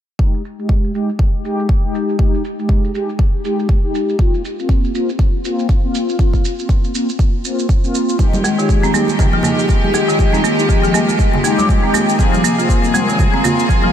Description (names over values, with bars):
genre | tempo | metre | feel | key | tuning
afro house | 120 BPM | 4/4 | swing 58% on 16ths | unclear | A4 = 442 Hz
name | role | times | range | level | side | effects
mellow synth brass | stabs | 0.2-13.9 s | Ab3 to G4 | -19 LUFS | left 2 dB | chorus, phaser, sidechain pumping, ping-pong delay
electronic kick drum | drums | 0.2-13.8 s | none | -15 LUFS | equal | none
shaker | drums | 0.2-13.8 s | none | -28 LUFS | right 6 dB | low-pass filter on perc, low-pass filter on room
rich chamber string section | sustained chords | 8.2-13.9 s | C3 to Ab4 | -20 LUFS | equal | sidechain pumping
congas | percussion | 8.2-13.9 s | none | -24 LUFS | right 2 dB | none
folk marimba with medium hard mallets | arpeggios | 8.4-13.9 s | Eb3 to C4 | -17 LUFS | right 1 dB | sidechain pumping, ping-pong delay
room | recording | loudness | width
moderate huge ambient reverb, RT60 4.5 s | dreamy mix soaked in reverb | -13 LUFS | side -10 dB against mid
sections
0.2-13.9 A section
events
filter sweep on drum 0.2-13.9; filter sweep on analog polysynth 0.2-13.9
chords
0.2 Ebadd11/Ab; 4.2 Bbsus2; 8.2 Fm9; 12.2 Ab69